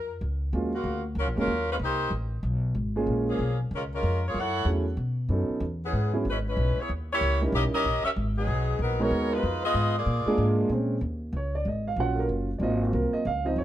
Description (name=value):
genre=jazz, big band swing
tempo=188 BPM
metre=4/4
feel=swing 62% on 8ths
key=Eb minor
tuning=A4 = 443 Hz
part: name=dark saxophone section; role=melody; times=0.0-10.6 s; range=Db3 to Gb5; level=-28 LUFS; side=left 1 dB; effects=plate reverb
part: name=upright bass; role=bass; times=0.0-13.6 s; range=Gb1 to B2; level=-28 LUFS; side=equal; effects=none
part: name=warm upright piano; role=accompaniment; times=0.5-13.6 s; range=F3 to Gb5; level=-27 LUFS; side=right 2 dB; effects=none
room=light reverb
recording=close, detailed microphones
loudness=-25 LUFS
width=side -12 dB against mid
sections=0.5-10.7 A section; 10.7-13.6 B section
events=upright piano solo 10.7-13.6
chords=0.0 Bbm; 0.5 Ebm11; 1.8 Cm7; 2.4 Abm69; 3.1 Bbm7; 4.3 Gbm7; 5.0 B9; 5.6 E6; 6.9 Eb7b9; 8.2 Abm9; 9.4 Fm7b5; 10.1 Bb7; 10.7 Bbm7; 12.0 Gbmaj7; 12.6 Ab13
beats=0.20 | 0.52 0.84 1.16 1.48 | 1.79 2.11 2.43 2.75 | 3.07 3.38 3.70 4.02 | 4.34 4.66 4.97 5.29 | 5.61 5.93 6.25 6.57 | 6.89 7.20 7.52 7.84 | 8.16 8.48 8.80 9.12 | 9.43 9.75 10.07 10.39 | 10.71 11.02 11.34 11.66 | 11.98 12.30 12.61 12.93 | 13.25 13.57